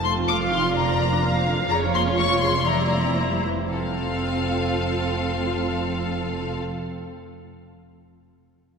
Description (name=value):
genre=quick classical-period movement for string orchestra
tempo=111-129 BPM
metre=2/4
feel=straight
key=F major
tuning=A4 = 441 Hz
part: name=rich studio violin section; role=melody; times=0.0-6.6 s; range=F5 to D6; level=-26 LUFS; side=left 4 dB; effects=none
part: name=rich studio viola section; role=accompaniment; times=0.0-6.6 s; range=Db3 to F4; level=-26 LUFS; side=right 2 dB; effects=none
part: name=clear studio cello section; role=bass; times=0.0-6.6 s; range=F2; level=-31 LUFS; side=right 2 dB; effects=none
part: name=rich studio double bass section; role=bass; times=0.0-6.6 s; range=F1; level=-28 LUFS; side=right 2 dB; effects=none
part: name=rich studio violin section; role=second line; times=0.3-6.6 s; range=A4 to F5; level=-29 LUFS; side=left 2 dB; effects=none
room=wet church reverb, RT60 2.9 s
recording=none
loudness=-21 LUFS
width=side -6 dB against mid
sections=0.0-3.7 A section; 3.7-5.8 B section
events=slowing down 1.2-3.7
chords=0.0 F7; 0.8 Bb/F; 1.7 Bbm/F; 2.7 C7/F; 3.7 F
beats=0.28 | 0.76 1.23 | 1.70 2.18 | 2.67 3.17 | 3.71 4.24 | 4.77 5.30